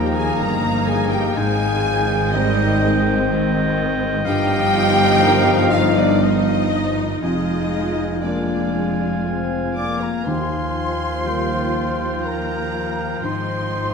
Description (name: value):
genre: cinematic, emotional film score for orchestra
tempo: 61 BPM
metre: 3/4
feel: rubato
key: Eb major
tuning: A4 = 440 Hz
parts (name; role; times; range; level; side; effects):
- bright studio violin section; melody; 0.0-13.9 s; D5 to D6; -31 LUFS; left 4 dB; none
- mellow duduk; melody; 0.0-13.9 s; D4 to D5; -26 LUFS; left 4 dB; none
- clear oboe; second line; 0.0-13.9 s; F5 to Bb5; -28 LUFS; right 4 dB; none
- clear studio violin section; second line; 0.0-13.9 s; D5 to D6; -30 LUFS; left 3 dB; none
- mellow clarinet; second line; 0.0-13.9 s; Eb5 to F5; -30 LUFS; left 3 dB; none
- mellow hollow silver concert flute; second line; 0.0-13.9 s; D5 to D6; -27 LUFS; left 1 dB; none
- clear studio viola section; accompaniment; 0.0-13.9 s; Eb3 to F4; -27 LUFS; right 3 dB; none
- dark baby grand piano; accompaniment; 0.0-13.9 s; Eb2 to C5; -27 LUFS; left 2 dB; none
- mellow French horn section; sustained chords; 0.0-13.9 s; Eb3 to F4; -25 LUFS; left 7 dB; none
- clear studio double bass section; bass; 0.0-13.9 s; F1 to Eb2; -26 LUFS; right 4 dB; none
- rich studio cello section; bass; 0.0-13.9 s; Eb2 to Ab2; -26 LUFS; right 4 dB; none
- timpani; percussion; 10.3-11.7 s; Eb3; -30 LUFS; right 2 dB; none
room: moderate scoring stage reverb, RT60 1.6 s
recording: none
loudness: -17 LUFS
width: side -5 dB against mid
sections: 0.0-13.9 A section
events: none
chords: 0.0 Ebadd9; 1.4 Abmaj7; 4.3 Ebadd9/G; 7.2 Bb7/F; 10.3 Ebadd9; 13.2 Abmaj7